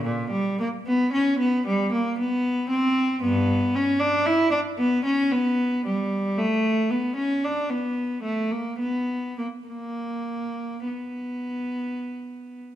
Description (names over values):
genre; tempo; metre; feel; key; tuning
classical, baroque-style suite movement for unaccompanied cello; 56 BPM; 3/4; uneven beats, rubato; B minor; A4 = 440 Hz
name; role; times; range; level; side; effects
rich cello; solo; 0.0-12.6 s; G2 to E4; -22 LUFS; equal; none
room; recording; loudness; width
moderate recital hall reverb, RT60 1.5 s; minimal, uncompressed stereo recording; -22 LUFS; side -12 dB against mid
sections
0.0-12.8 A section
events
none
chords
none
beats
| 0.06 1.15 2.18 | 3.22 4.26 5.34 | 6.39 7.44 8.52 | 9.68 10.86 12.02